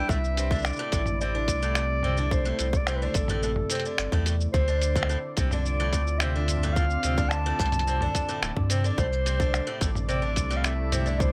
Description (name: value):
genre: folktronica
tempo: 108 BPM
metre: 4/4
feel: straight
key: C major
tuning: A4 = 440 Hz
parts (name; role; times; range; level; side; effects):
- mellow clarinet; melody; 0.0-11.3 s; A4 to A5; -33 LUFS; equal; digital delay
- warm analog pad; sustained chords; 0.0-11.3 s; C3 to D5; -38 LUFS; equal; chorus, tremolo, vintage 12-bit sampler grit
- picked twelve-string acoustic guitar; arpeggios; 0.0-11.3 s; A2 to D3; -35 LUFS; equal; vintage 12-bit sampler grit, digital delay
- warm sub bass; bass; 0.0-11.3 s; D1 to G2; -30 LUFS; equal; none
- electronic kick drum; drums; 0.1-11.3 s; none; -30 LUFS; equal; studio reverb
- lo-fi sampler-style drum kit; drums; 0.1-11.3 s; finger snaps, hi-hat, shaker, toms; -34 LUFS; equal; studio reverb
room: light reverb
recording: none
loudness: -26 LUFS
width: mono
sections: 0.1-11.3 A section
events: none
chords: 0.1 C69; 4.5 Dm7; 9.0 C69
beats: | 0.09 0.65 1.20 1.76 | 2.31 2.87 3.42 3.98 | 4.54 5.09 5.65 6.20 | 6.76 7.31 7.87 8.42 | 8.98 9.54 10.09 10.65 | 11.20